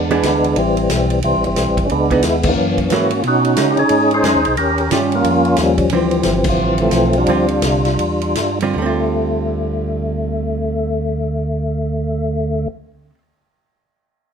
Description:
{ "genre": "soul jazz organ trio", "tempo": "152-180 BPM", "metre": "4/4", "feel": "swing 63% on 8ths", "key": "D dorian", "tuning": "A4 = 444 Hz", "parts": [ { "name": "percussive tonewheel organ", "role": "melody", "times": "0.0-12.7 s", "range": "E3 to C5", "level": "-16 LUFS", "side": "equal", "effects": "overdrive, chorus vibrato, slow rotary speaker" }, { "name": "mellow tonewheel organ", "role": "bass", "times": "0.0-12.7 s", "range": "G1 to C#3", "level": "-21 LUFS", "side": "equal", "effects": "slow rotary speaker" }, { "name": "hollow-body jazz guitar", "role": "accompaniment", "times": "0.1-13.2 s", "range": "D3 to G#4", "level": "-22 LUFS", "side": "right 5 dB", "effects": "none" }, { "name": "vintage drum kit", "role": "drums", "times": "0.1-8.7 s", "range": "crash cymbal, hi-hat, kick drum, ride cymbal, snare drum", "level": "-24 LUFS", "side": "equal", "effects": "none" } ], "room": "moderate club reverb, RT60 0.8 s", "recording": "minimal, uncompressed stereo recording", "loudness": "-14 LUFS", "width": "side -7 dB against mid", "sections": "0.0-8.8 A section; 8.8-11.9 B section", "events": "band accent 2.4, 6.4; slowing down 5.9-8.8", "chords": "0.0 E7; 0.6 Am9; 1.9 C#m9; 2.6 F#9; 3.2 B69; 4.6 Eb9; 5.9 Dm11; 8.8 Dm7" }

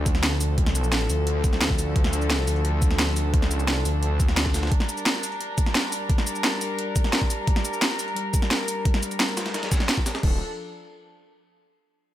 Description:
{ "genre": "dark technical drum and bass", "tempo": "174 BPM", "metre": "4/4", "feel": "straight", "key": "D minor", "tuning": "A4 = 440 Hz", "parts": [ { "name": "rich chamber string section", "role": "sustained chords", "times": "0.0-10.4 s", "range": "F3 to Bb4", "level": "-30 LUFS", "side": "left 1 dB", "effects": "sidechain pumping, low-pass filter" }, { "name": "wide detuned saw bass", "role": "bass", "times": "0.0-4.7, 10.2-10.4 s", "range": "D1 to D2", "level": "-24 LUFS", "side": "equal", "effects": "chorus, tube saturation" }, { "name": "breakbeat sampler-style drum kit", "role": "drums", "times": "0.1-10.2 s", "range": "hi-hat, snare drum", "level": "-34 LUFS", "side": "equal", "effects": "none" }, { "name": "drum and bass drum kit", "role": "drums", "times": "0.1-10.3 s", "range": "crash cymbal, hi-hat, shaker, snare drum", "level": "-26 LUFS", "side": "equal", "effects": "overdrive" }, { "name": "electronic kick drum", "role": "drums", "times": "0.1-10.3 s", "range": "none", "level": "-22 LUFS", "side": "equal", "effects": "overdrive" } ], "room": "little or no reverb", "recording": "none", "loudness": "-21 LUFS", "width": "side -13 dB against mid", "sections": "0.0-10.2 A section; 10.2-11.6 B section", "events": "none", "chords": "0.0 Dm; 4.7 Gm; 10.2 Dm" }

